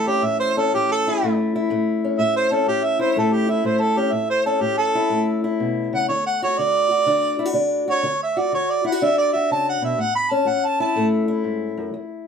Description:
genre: acoustic country blues, solo or duo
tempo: 123 BPM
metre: 4/4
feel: swing 67% on 8ths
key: A major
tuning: A4 = 440 Hz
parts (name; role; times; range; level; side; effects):
- mellow harmonica; melody; 0.0-11.1 s; G4 to B5; -20 LUFS; right 2 dB; plate reverb
- fingerpicked steel-string acoustic guitar; accompaniment; 0.0-12.3 s; E2 to F#4; -21 LUFS; left 3 dB; none
room: moderate studio reverb, RT60 0.6 s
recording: none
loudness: -18 LUFS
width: side -6 dB against mid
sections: 0.0-12.3 A section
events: harmonica solo 0.0-12.3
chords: 0.0 A; 6.1 D; 10.0 A

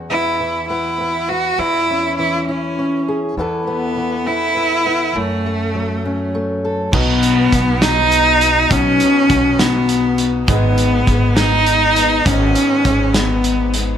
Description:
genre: indie folk with a building arrangement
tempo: 68 BPM (dotted quarters)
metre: 6/8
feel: straight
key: unclear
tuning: A4 = 442 Hz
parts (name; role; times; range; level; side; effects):
- fingerpicked steel-string acoustic guitar; accompaniment; 0.0-6.9 s; E2 to A4; -22 LUFS; left 1 dB; none
- upright bass; bass; 0.0-14.0 s; G#1 to F#2; -22 LUFS; equal; none
- clear cello; melody; 0.1-13.8 s; A3 to F#4; -16 LUFS; equal; plate reverb, digital delay
- clear upright piano; accompaniment; 6.9-14.0 s; G#1 to B4; -26 LUFS; right 4 dB; none
- picked steel-string acoustic guitar; accompaniment; 6.9-14.0 s; G#2 to G#4; -22 LUFS; left 7 dB; none
- loose indie drum kit; drums; 6.9-13.9 s; crash cymbal, hi-hat, kick drum, snare drum; -19 LUFS; right 1 dB; none
room: moderate large studio reverb, RT60 0.9 s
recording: none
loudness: -13 LUFS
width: side -9 dB against mid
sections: 0.0-6.9 A section; 6.9-14.0 B section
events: none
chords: 0.0 E5; 1.6 C#m/E; 3.4 Asus2/E; 5.2 F#m; 6.9 B; 10.5 G#m

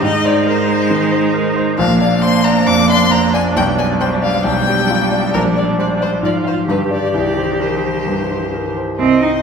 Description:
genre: quick classical-period movement for piano quartet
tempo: 135 BPM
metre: 4/4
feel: straight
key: C minor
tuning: A4 = 440 Hz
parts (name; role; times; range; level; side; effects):
- clear violin; melody; 0.0-9.4 s; Bb4 to D6; -20 LUFS; left 6 dB; none
- clear cello; second line; 0.0-9.3 s; D3 to Eb4; -18 LUFS; right 4 dB; none
- clear concert grand piano; accompaniment; 0.0-9.4 s; Bb1 to F5; -17 LUFS; left 1 dB; none
- clear viola; accompaniment; 0.0-9.4 s; D4 to Eb5; -22 LUFS; right 1 dB; none
room: wet recital hall reverb, RT60 1.6 s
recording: heard from further back in the room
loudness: -13 LUFS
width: side -6 dB against mid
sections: 0.0-9.0 A section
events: none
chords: 0.0 Ab; 1.8 Bb; 3.6 G/B; 5.3 Gm/Bb; 6.2 Fm/Ab; 6.7 G5; 7.1 Cm

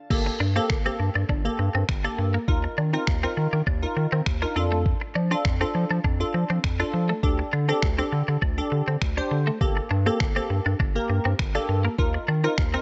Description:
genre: dance-pop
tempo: 101 BPM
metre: 4/4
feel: straight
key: G minor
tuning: A4 = 439 Hz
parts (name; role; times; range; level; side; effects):
- wavetable chord stab; accompaniment; 0.1-12.8 s; Bb3 to C5; -30 LUFS; equal; sidechain pumping
- round analog bass; bass; 0.1-12.8 s; G1 to F3; -27 LUFS; equal; sidechain pumping
- lo-fi sampler-style drum kit; drums; 0.1-12.7 s; crash cymbal, finger snaps, kick drum; -28 LUFS; equal; none
- twelve-string electric guitar; riff; 0.3-12.8 s; A3 to D4; -33 LUFS; equal; analog chorus
room: light reverb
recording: nothing above 7.9 kHz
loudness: -24 LUFS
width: mono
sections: 0.1-12.8 A section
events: none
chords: 0.1 Gmadd9; 2.5 Ebsus2; 4.6 F6; 7.2 Dsus4; 9.6 Gmadd9; 12.0 Ebsus2

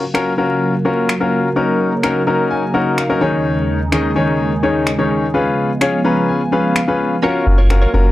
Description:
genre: dance-pop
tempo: 127 BPM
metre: 4/4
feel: straight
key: F# major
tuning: A4 = 440 Hz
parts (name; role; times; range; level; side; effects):
- warm concert grand piano; accompaniment; 0.0-8.1 s; D#3 to A#5; -16 LUFS; left 3 dB; none
- sweeping resonant pad; sustained chords; 0.0-8.1 s; D#2 to E#5; -19 LUFS; right 2 dB; chorus
- electronic finger snaps; drums; 0.1-7.8 s; none; -21 LUFS; equal; none
- direct-recorded clean electric guitar; riff; 7.2-8.1 s; C#4 to C#5; -21 LUFS; right 4 dB; analog chorus
- warm sub bass; bass; 7.5-8.1 s; F#1; -12 LUFS; equal; none
room: light reverb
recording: vinyl crackle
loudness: -14 LUFS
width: side -15 dB against mid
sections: 0.0-8.1 A section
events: grand piano fill 2.0-3.5, 5.8-7.2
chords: 0.0 F#maj7; 1.6 D#m7; 3.2 G#sus4/D#; 5.3 C#7; 7.2 F#maj7

